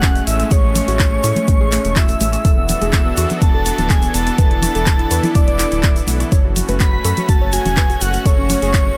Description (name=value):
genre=progressive house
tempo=124 BPM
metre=4/4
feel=straight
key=A major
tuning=A4 = 439 Hz
part: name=soft octave-layered synth lead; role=melody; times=0.0-9.0 s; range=C#5 to B5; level=-26 LUFS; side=equal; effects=chorus, tremolo, digital delay
part: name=airy dreamy lead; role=second line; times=0.0-9.0 s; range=C#6 to B6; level=-29 LUFS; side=equal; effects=chorus, sidechain pumping, delay
part: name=supersaw pad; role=sustained chords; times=0.0-9.0 s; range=E3 to A4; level=-27 LUFS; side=equal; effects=sidechain pumping
part: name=soft round pluck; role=arpeggios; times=0.0-9.0 s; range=A3 to E5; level=-27 LUFS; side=equal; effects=chorus, sidechain pumping, delay
part: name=round analog bass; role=bass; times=0.0-8.9 s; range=D1 to A2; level=-23 LUFS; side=equal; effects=sidechain pumping
part: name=deep house drum kit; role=drums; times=0.0-8.8 s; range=handclaps, hi-hat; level=-26 LUFS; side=equal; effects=none
part: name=electronic kick drum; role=drums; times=0.0-8.8 s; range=none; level=-17 LUFS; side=equal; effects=none
part: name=tube shaker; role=percussion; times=0.0-8.8 s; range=none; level=-30 LUFS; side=equal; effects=none
part: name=sub drop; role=sound effects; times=0.0-0.5 s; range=none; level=barely audible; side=none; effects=none
part: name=congas and woodblock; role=percussion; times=0.8-8.6 s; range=none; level=-26 LUFS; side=equal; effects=sidechain pumping on perc
room=little or no reverb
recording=none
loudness=-15 LUFS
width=mono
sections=0.0-9.0 A section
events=impact 0.0-0.5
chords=0.0 Amaj7; 2.4 E7sus4; 6.3 F#m